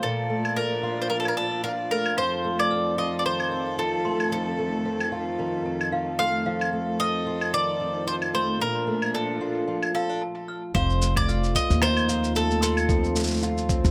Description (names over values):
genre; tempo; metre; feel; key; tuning
folktronica; 112 BPM; 4/4; swing 56% on 16ths; F mixolydian; A4 = 440 Hz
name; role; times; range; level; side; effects
bowl-back mandolin; melody; 0.0-13.9 s; A4 to F5; -29 LUFS; equal; tape echo
warm string quartet; sustained chords; 0.0-10.2 s; F2 to D5; -37 LUFS; equal; low-pass filter
fingerpicked twelve-string acoustic guitar; arpeggios; 0.0-13.9 s; F2 to F4; -30 LUFS; equal; low-pass filter
electronic claves, cabasa and rim click; drums; 0.4-13.9 s; none; -32 LUFS; equal; none
toy piano; second line; 2.2-12.9 s; F5 to F6; -37 LUFS; equal; tape echo
upright bass; bass; 10.7-13.9 s; F1 to Eb2; -27 LUFS; equal; none
electronic kick drum; drums; 10.7-13.8 s; none; -29 LUFS; equal; none
room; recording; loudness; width
light reverb; none; -25 LUFS; mono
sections
0.0-10.7 A section; 10.7-13.9 B section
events
break 10.2-10.7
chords
0.0 Bbmaj7; 2.2 F7; 8.6 Bbmaj7; 10.7 F7